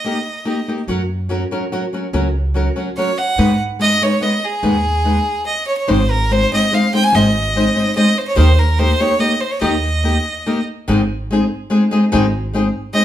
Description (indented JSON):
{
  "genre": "mexican folk, mariachi",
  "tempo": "144 BPM",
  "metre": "3/4",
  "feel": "straight",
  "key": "G# minor, Ab major from 5.9 s",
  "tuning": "A4 = 440 Hz",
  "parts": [
    { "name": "clear violin", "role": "melody", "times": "0.0-0.7, 3.0-10.6, 12.9-13.0 s", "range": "G#4 to Ab5", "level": "-18 LUFS", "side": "right 1 dB", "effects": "none" },
    { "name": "nylon-string guitar", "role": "accompaniment", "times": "0.0-13.0 s", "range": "G#2 to C5", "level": "-17 LUFS", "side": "left 1 dB", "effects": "none" },
    { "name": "upright bass", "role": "bass", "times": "0.9-12.7 s", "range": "Ab1 to G#2", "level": "-18 LUFS", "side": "right 1 dB", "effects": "none" }
  ],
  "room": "wet large studio reverb, RT60 0.9 s",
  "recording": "band playing live in one room",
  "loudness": "-14 LUFS",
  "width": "side -11 dB against mid",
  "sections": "0.0-5.9 A section; 5.9-13.0 B section",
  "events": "stop 5.5-5.9",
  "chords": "0.0 D#; 0.9 F#; 3.4 G#m; 5.9 Ab; 8.4 Eb; 10.9 Ab"
}